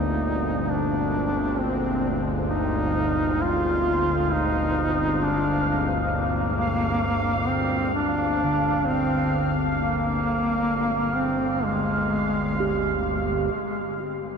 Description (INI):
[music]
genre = dark ambient drone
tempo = 65 BPM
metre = 4/4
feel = straight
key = unclear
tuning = A4 = 439 Hz
[part]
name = warm duduk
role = melody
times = 0.0-13.1 s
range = Ab3 to F4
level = -25 LUFS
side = equal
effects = ping-pong delay
[part]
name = sweeping resonant pad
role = sustained chords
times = 0.0-14.4 s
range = G2 to D5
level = -33 LUFS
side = equal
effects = chorus
[part]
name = bowed-like drone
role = drone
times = 0.0-14.4 s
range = G1 to D2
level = -27 LUFS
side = left 1 dB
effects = built-in reverb
[part]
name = bubbling stepped-filter texture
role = texture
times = 0.0-14.4 s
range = Bb4 to F5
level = -30 LUFS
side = right 2 dB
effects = chorus, built-in reverb
[part]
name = bronze singing bowl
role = arpeggios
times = 8.4-14.4 s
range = D3 to G4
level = -29 LUFS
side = right 4 dB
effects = ping-pong delay
[sound]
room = wet huge ambient reverb, RT60 8.0 s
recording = none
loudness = -22 LUFS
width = side -6 dB against mid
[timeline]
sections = 0.0-13.5 A section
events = fade-out on analog synth pad 0.0-13.5; filter sweep on synth drone 0.0-13.5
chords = 0.0 Fm/G; 13.5 Gm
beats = 0.69 1.61 | 2.52 3.43 4.34 5.24 | 6.15 7.06 7.98 8.90 | 9.81 10.73 11.66 12.61 | 13.54